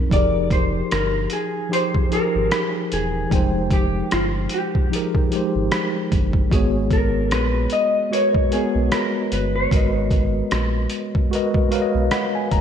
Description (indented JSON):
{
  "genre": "lo-fi hip hop",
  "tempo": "75 BPM",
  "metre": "4/4",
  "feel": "swing 57% on 16ths",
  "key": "unclear",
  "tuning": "A4 = 440 Hz",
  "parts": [
    { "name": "mellow tine electric piano", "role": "accompaniment", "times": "0.0-12.6 s", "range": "F3 to Bb5", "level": "-22 LUFS", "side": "equal", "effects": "medium stereo tremolo, cassette tape, low-pass filter" },
    { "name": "vintage hollow-body jazz guitar", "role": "melody", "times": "0.1-12.5 s", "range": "F4 to Eb5", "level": "-24 LUFS", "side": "left 1 dB", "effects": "wide subtle chorus, low-pass filter, tape echo" },
    { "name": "round analog bass", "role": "bass", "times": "0.1-12.6 s", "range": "E1 to Cb2", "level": "-24 LUFS", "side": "equal", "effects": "none" },
    { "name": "trip hop sampler-style drum kit", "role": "drums", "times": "0.1-12.6 s", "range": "hi-hat, kick drum, rim click", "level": "-22 LUFS", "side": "equal", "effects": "none" }
  ],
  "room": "moderate lush hall reverb, RT60 1.8 s, digital ambience",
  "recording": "dreamy mix soaked in reverb",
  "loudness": "-18 LUFS",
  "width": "side -8 dB against mid",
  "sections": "0.1-12.6 A section",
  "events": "tine electric piano fill 11.3-12.6",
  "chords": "0.0 Fm11; 6.5 Abm11",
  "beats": "| 0.11 0.91 1.71 2.51 | 3.31 4.11 4.91 5.71 | 6.51 7.31 8.11 8.91 | 9.71 10.51 11.31 12.11"
}